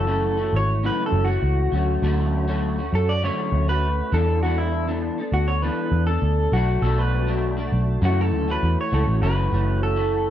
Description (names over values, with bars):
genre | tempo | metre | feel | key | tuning
indie pop, bedroom pop | 100 BPM | 4/4 | straight | F# minor | A4 = 439 Hz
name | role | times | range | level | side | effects
electric guitar through a small old amp | melody | 0.0-10.3 s | E4 to D5 | -25 LUFS | equal | wide subtle chorus, slapback echo
electric guitar through a small old amp | accompaniment | 0.0-10.3 s | F#2 to A4 | -26 LUFS | left 1 dB | ensemble chorus, vibrato effect
vintage muted picked electric bass | bass | 0.0-10.3 s | F#1 to F#2 | -22 LUFS | equal | none
room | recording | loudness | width
little or no reverb | dry, close 1970s-style studio recording | -19 LUFS | side -11 dB against mid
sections
0.0-9.2 A section; 9.2-10.3 B section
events
clean electric guitar solo 0.0-9.2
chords
0.0 F#m7; 1.7 Dmaj7; 4.1 E7sus4; 6.5 Bm7; 8.0 F#m7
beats
0.22 0.82 1.43 | 2.03 2.63 3.23 3.83 | 4.43 5.03 5.63 6.23 | 6.83 7.43 8.03 8.63 | 9.23 9.83